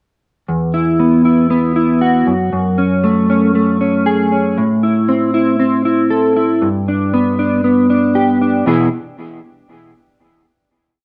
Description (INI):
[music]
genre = indie pop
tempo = 117 BPM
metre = 4/4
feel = straight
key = unclear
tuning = A4 = 440 Hz
[part]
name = mellow electric guitar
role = solo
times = 0.5-8.9 s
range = E2 to A4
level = -14 LUFS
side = equal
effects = analog chorus
[sound]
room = moderate studio reverb, RT60 0.7 s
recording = none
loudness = -14 LUFS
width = mono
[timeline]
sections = 0.5-8.7 verse; 8.7-10.7 final chord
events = none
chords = 0.5 Esus2; 2.3 F#madd9; 4.6 Am; 6.6 G; 8.7 E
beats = | 0.48 0.99 1.50 2.02 | 2.53 3.04 3.55 4.06 | 4.58 5.09 5.60 6.11 | 6.62 7.14 7.65 8.16 | 8.67